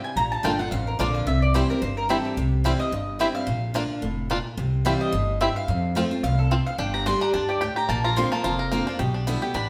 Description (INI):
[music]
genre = bluegrass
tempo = 217 BPM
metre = 4/4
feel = swing 55% on 8ths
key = unclear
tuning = A4 = 440 Hz
[part]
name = picked steel-string acoustic guitar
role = accompaniment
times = 0.0-9.7 s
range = E2 to G4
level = -31 LUFS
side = equal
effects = none
[part]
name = mandolin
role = stabs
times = 0.0-9.7 s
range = G4 to C6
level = -30 LUFS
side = equal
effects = none
[part]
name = upright bass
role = bass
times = 0.2-9.7 s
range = F1 to F2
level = -28 LUFS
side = equal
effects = none
[part]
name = bluegrass banjo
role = melody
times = 0.4-9.7 s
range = F3 to Bb4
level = -30 LUFS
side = equal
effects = none
[sound]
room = wet stone room reverb, RT60 1.1 s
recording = band playing live in one room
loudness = -24 LUFS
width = mono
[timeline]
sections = 0.0-6.8 A section; 6.8-9.7 A section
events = mandolin solo 0.0-9.7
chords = 0.2 Bb; 1.3 C; 3.5 Bb; 4.6 C; 5.7 F; 6.8 Gsus2; 7.9 Bbadd9; 9.0 G6/B